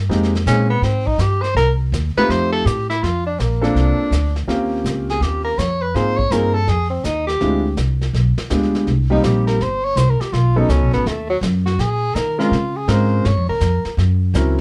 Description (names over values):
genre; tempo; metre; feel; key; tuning
jazz, small-group swing and bop; 164 BPM; 4/4; swing 65% on 8ths; unclear; A4 = 439 Hz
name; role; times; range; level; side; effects
upright bass; bass; 0.0-14.6 s; G1 to Eb3; -21 LUFS; equal; none
warm concert grand piano; accompaniment; 0.1-14.6 s; F#3 to Bb4; -22 LUFS; equal; none
vintage brush drum kit; drums; 0.1-14.6 s; brushed snare drum, hi-hat, kick drum, snare drum; -31 LUFS; equal; none
warm tenor saxophone; second line; 0.5-13.9 s; F#3 to Db5; -23 LUFS; equal; none
room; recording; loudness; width
light reverb; dark, warm production; -18 LUFS; mono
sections
0.0-3.0 A section; 3.0-14.6 A section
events
tenor saxophone solo 0.0-14.6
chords
0.1 Fm11; 1.6 Cm; 2.3 F7; 3.0 Bbmaj9; 4.5 Eb13; 5.9 Ab69; 7.4 Dm7b5; 8.1 G7b9; 8.9 Cm7; 10.3 B9; 11.8 Bbm7; 13.2 Gm7b5; 14.0 Gb7#11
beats
| 0.10 0.47 0.83 1.20 | 1.56 1.93 2.29 2.66 | 3.02 3.39 3.76 4.12 | 4.49 4.85 5.22 5.58 | 5.95 6.31 6.68 7.04 | 7.41 7.78 8.14 8.51 | 8.87 9.23 9.60 9.96 | 10.33 10.70 11.06 11.42 | 11.79 12.15 12.52 12.88 | 13.25 13.61 13.98 14.34